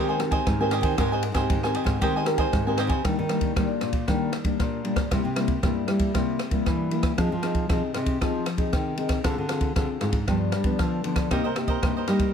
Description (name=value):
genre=samba and choro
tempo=116 BPM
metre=4/4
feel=straight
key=Ab major, Eb major from 3.0 s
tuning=A4 = 441 Hz
part: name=cavaquinho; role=accompaniment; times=0.0-3.0, 11.3-12.3 s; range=Eb4 to Ab5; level=-29 LUFS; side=right 3 dB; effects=none
part: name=nylon-string guitar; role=accompaniment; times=0.0-12.3 s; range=G2 to Bb4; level=-27 LUFS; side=left 3 dB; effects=none
part: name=nylon-string guitar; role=bass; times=0.0-12.3 s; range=G2 to G3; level=-28 LUFS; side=right 1 dB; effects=none
part: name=open jazz drum kit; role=drums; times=0.2-12.3 s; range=kick drum, ride cymbal, rim click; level=-27 LUFS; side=right 1 dB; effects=none
room=moderate studio reverb, RT60 0.6 s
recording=none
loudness=-22 LUFS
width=side -7 dB against mid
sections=0.0-3.0 A section; 3.0-12.3 B section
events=none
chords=0.0 Abmaj9; 3.0 Ebmaj7; 5.1 C7; 7.2 Fm7; 9.2 Dm7b5; 10.3 G7; 11.3 Cm7